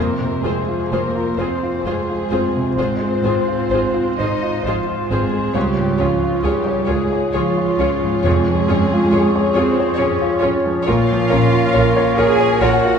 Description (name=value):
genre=classical, romantic movement for piano and orchestra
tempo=62-70 BPM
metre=3/4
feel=rubato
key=unclear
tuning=A4 = 440 Hz
part: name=clear baby grand piano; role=melody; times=0.0-13.0 s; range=Db2 to Db5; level=-20 LUFS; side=left 1 dB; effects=none
part: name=warm studio violin section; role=melody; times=0.0-12.7 s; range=C5 to Db5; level=-27 LUFS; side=left 2 dB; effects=none
part: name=dark cor anglais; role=second line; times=0.0-13.0 s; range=C5 to Db5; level=-26 LUFS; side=right 1 dB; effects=none
part: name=mellow hollow wooden flute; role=second line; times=0.0-13.0 s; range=F4 to Ab5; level=-29 LUFS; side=left 3 dB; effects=none
part: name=warm clarinet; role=second line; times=0.0-13.0 s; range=F4 to Bb4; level=-26 LUFS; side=right 4 dB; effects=none
part: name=warm studio violin section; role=second line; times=0.0-13.0 s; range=F4 to Ab5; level=-28 LUFS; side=left 4 dB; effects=none
part: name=warm studio viola section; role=accompaniment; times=0.0-12.7 s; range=F4 to Bb4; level=-28 LUFS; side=right 1 dB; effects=none
part: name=dark French horn section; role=sustained chords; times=0.0-13.0 s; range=F4 to Db5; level=-25 LUFS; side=left 1 dB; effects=none
part: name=rich studio double bass section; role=bass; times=0.0-12.7 s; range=F1 to F2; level=-25 LUFS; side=right 1 dB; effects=none
part: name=warm studio cello section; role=bass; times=0.0-13.0 s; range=F3 to Ab4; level=-23 LUFS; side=right 3 dB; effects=none
part: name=timpani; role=percussion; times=0.0-1.3, 8.2-9.5 s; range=F2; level=-26 LUFS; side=right 2 dB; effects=none
room=wet scoring stage reverb, RT60 1.9 s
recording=heard from further back in the room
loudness=-15 LUFS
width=side -7 dB against mid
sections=0.0-13.0 A section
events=none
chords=0.0 Fm; 2.8 Fm/Ab; 5.6 Db; 8.3 Db/F; 10.9 Bbm